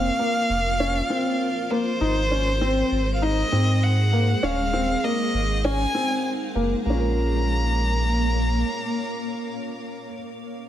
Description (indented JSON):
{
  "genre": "piano and strings electronica",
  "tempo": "99 BPM",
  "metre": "4/4",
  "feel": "straight",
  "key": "Bb minor",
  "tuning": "A4 = 441 Hz",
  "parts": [
    { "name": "rich violin", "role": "melody", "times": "0.0-10.0 s", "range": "C5 to Bb5", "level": "-26 LUFS", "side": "equal", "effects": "none" },
    { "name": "granular cloud pad", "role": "sustained chords", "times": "0.0-10.0 s", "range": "Ab3 to Gb5", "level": "-30 LUFS", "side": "right 1 dB", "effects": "built-in reverb" },
    { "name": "felt-muted upright piano", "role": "riff", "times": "0.0-10.2 s", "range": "Bb3 to Bb4", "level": "-26 LUFS", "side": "left 1 dB", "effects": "digital delay" },
    { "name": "round analog bass", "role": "bass", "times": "0.0-8.6 s", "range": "Eb1 to Ab2", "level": "-23 LUFS", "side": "equal", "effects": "tube saturation" }
  ],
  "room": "light reverb, small room ambience",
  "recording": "none",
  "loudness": "-20 LUFS",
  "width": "side -11 dB against mid",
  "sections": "0.0-6.9 A section; 6.9-9.3 B section",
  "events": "drop 0.0-6.9",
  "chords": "0.0 Fsus4; 2.0 Abadd9; 4.4 Ebmadd9; 5.6 Abadd9; 6.9 Bbm",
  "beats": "0.19 0.80 1.40 | 2.01 2.61 3.22 3.83 | 4.43 5.04 5.64 6.25 | 6.86 7.46 8.07 8.68"
}